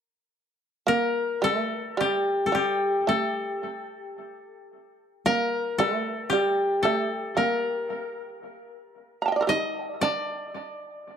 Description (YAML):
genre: japanese traditional, Japanese chamber music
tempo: 56 BPM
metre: 4/4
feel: rubato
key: G hirajoshi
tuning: A4 = 445 Hz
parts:
  - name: koto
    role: melody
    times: 0.9-11.2 s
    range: G4 to Eb5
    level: -26 LUFS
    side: left 2 dB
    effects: analog delay
  - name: shamisen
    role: second line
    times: 0.9-10.5 s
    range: G3 to Bb5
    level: -28 LUFS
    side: right 5 dB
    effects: analog delay
room: moderate spring reverb, RT60 1.6 s, small room reverb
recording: dark, warm production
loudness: -23 LUFS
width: side -8 dB against mid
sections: 0.0-11.2 A section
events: none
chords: none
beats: 0.86 1.98 3.08 | 4.17 5.26 6.34 7.38 | 8.44 9.49 10.54